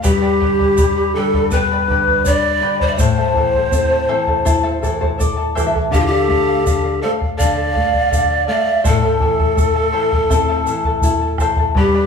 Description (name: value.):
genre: andean folk, Andean ensemble.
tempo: 82 BPM.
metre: 4/4.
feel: straight.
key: A minor.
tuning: A4 = 442 Hz.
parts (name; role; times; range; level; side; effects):
breathy bright large pan pipes; melody; 0.0-12.1 s; F4 to D5; -18 LUFS; left 2 dB; none.
charango; accompaniment; 0.0-12.1 s; E4 to B5; -21 LUFS; left 3 dB; none.
nylon-string guitar; accompaniment; 0.0-12.1 s; G2 to E5; -22 LUFS; left 3 dB; none.
bombo; percussion; 0.0-11.9 s; none; -19 LUFS; left 1 dB; none.
egg shaker; percussion; 0.0-11.6 s; none; -31 LUFS; right 4 dB; none.
mellow large quena; second line; 0.1-12.1 s; E4 to F5; -22 LUFS; right 5 dB; none.
room: wet large studio reverb, RT60 1.1 s.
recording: band playing live in one room, studio reverb.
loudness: -14 LUFS.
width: side -6 dB against mid.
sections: 0.0-11.8 A section.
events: nylon-string guitar fill 4.5-5.9.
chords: 0.0 G; 3.0 Am; 5.9 Dm; 8.9 Am.